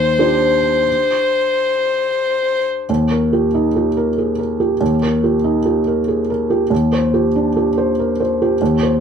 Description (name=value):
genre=neoclassical piano and strings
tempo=87-96 BPM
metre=3/4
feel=rubato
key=Eb major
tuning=A4 = 440 Hz
part: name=warm violin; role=melody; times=0.0-2.6 s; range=C5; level=-15 LUFS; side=left 3 dB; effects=none
part: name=felt-muted upright piano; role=accompaniment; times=0.0-9.0 s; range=Eb2 to C5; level=-15 LUFS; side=right 1 dB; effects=none
room=moderate studio reverb, RT60 0.6 s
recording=none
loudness=-14 LUFS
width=side -7 dB against mid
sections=0.0-2.9 A section; 2.9-9.0 B section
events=none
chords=0.0 Cmadd9/Eb; 2.9 Eb; 6.7 Cmadd9/Eb